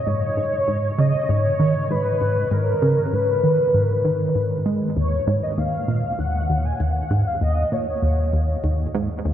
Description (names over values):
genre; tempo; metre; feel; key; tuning
ambient, sequencer-driven space music; 98 BPM; 4/4; straight; Eb minor; A4 = 440 Hz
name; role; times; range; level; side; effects
mellow horn-like synth lead; melody; 0.0-8.9 s; Bb4 to Ab5; -23 LUFS; equal; ensemble chorus, analog delay
tight sequenced synth; riff; 0.1-9.3 s; Eb2 to Ab3; -21 LUFS; equal; chorus, analog delay
room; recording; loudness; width
wet cathedral reverb, RT60 7.0 s; in a vast, echoing space; -18 LUFS; side -10 dB against mid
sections
0.0-5.0 A section; 5.0-9.3 B section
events
filter sweep on synth arpeggio sound 0.0-5.0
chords
0.1 Abm; 5.0 Ebm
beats
| 0.07 0.68 1.29 1.91 | 2.52 3.13 3.74 4.35 | 4.97 5.58 6.19 6.80 | 7.42 8.03 8.64 9.25